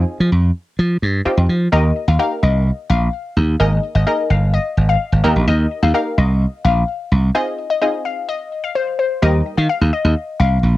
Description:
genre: dance-pop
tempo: 128 BPM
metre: 4/4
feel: straight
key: Eb major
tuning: A4 = 440 Hz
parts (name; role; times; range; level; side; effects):
- punchy chord stab; accompaniment; 0.0-9.7 s; G3 to Bb4; -21 LUFS; right 1 dB; chorus, cassette tape
- slap bass; bass; 0.0-10.8 s; G1 to F3; -14 LUFS; equal; none
- glassy wavetable pluck; melody; 1.7-10.7 s; C5 to F5; -21 LUFS; left 6 dB; chorus
room: light reverb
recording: home recording on cassette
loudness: -15 LUFS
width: side -16 dB against mid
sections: 0.0-1.7 A section; 1.7-9.2 B section; 9.2-10.8 C section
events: break 7.4-9.2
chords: 0.0 Fm7; 1.7 Eb; 3.6 Absus2; 5.2 Eb; 7.4 Fm7; 9.2 Eb

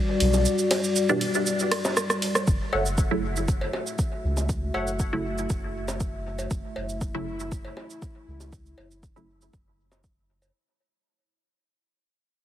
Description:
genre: dub techno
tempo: 119 BPM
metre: 4/4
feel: straight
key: F# phrygian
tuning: A4 = 439 Hz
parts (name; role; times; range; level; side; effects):
- dark analog pad; sustained chords; 0.0-10.5 s; G3 to E5; -29 LUFS; left 2 dB; chorus, vintage 12-bit sampler grit, sidechain pumping
- soft dub sub bass; bass; 0.2-10.5 s; F#1 to C#2; -30 LUFS; equal; sidechain pumping
- punchy analog drum machine; drums; 0.2-10.5 s; hi-hat, ride cymbal, rim click, shaker; -29 LUFS; right 2 dB; overdrive
- bongos and cowbell; percussion; 0.3-10.5 s; none; -32 LUFS; equal; sidechain pumping on perc, dub echo
- filtered dub chord stab; stabs; 1.1-9.3 s; B2 to E4; -30 LUFS; right 2 dB; phaser, cassette tape, sidechain pumping, dub echo
- electronic kick drum; drums; 2.5-10.1 s; none; -27 LUFS; equal; overdrive
- wavetable chord stab; riff; 2.7-4.9 s; A4 to F#5; -33 LUFS; left 1 dB; phaser, sidechain pumping, dub echo
room: light reverb, digital ambience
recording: heavily compressed radio sound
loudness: -24 LUFS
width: side -11 dB against mid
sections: 0.0-2.5 A section; 2.5-10.5 B section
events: break 0.5-2.5; drum fill 1.7-2.5; fade-out 2.5-10.5; filter sweep on synth stab 2.5-10.5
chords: 0.0 Em7 (rootless); 2.5 F#m7

